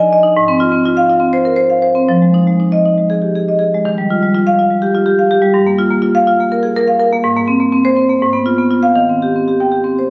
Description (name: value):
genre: classical, contemporary piece for solo marimba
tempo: 245 BPM (eighths)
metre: 7/8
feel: rubato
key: unclear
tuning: A4 = 440 Hz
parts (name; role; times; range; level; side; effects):
- marimba with medium hard mallets; solo; 0.0-10.1 s; G2 to Ab5; -10 LUFS; equal; none
room: moderate recital hall reverb, RT60 1.6 s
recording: recorded on a phone in the room, studio reverb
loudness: -10 LUFS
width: side -28 dB against mid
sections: 0.0-10.1 A section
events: none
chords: 0.3 Ab6; 2.1 Fm7; 3.8 Ebadd9; 5.5 Gm7; 7.2 Abadd9; 8.2 Abm6; 9.0 Eb6